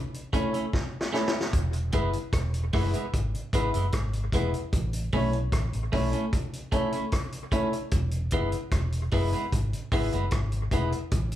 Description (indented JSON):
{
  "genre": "roots reggae",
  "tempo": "75 BPM",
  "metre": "4/4",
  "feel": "straight",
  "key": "E major",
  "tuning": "A4 = 440 Hz",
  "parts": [
    { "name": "vintage drum kit", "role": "drums", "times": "0.1-11.4 s", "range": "hi-hat, kick drum, rim click, snare drum", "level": "-29 LUFS", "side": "equal", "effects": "none" },
    { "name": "clean electric guitar", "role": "accompaniment", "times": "0.3-10.9 s", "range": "G#3 to E4", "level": "-31 LUFS", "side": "right 2 dB", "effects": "none" },
    { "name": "dark upright piano", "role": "stabs", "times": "0.3-11.0 s", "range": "E4 to C#5", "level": "-33 LUFS", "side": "left 4 dB", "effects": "none" },
    { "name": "vintage muted fingered electric bass", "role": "bass", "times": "1.5-11.4 s", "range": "E1 to B1", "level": "-29 LUFS", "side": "equal", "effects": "none" }
  ],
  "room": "moderate large studio reverb, RT60 0.9 s",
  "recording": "band playing live in one room, faint mains hum",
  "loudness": "-25 LUFS",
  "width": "side -12 dB against mid",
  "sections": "0.0-11.4 A section",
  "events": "drum fill 0.7-1.5",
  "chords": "0.0 A; 1.5 E; 4.7 A; 7.9 E"
}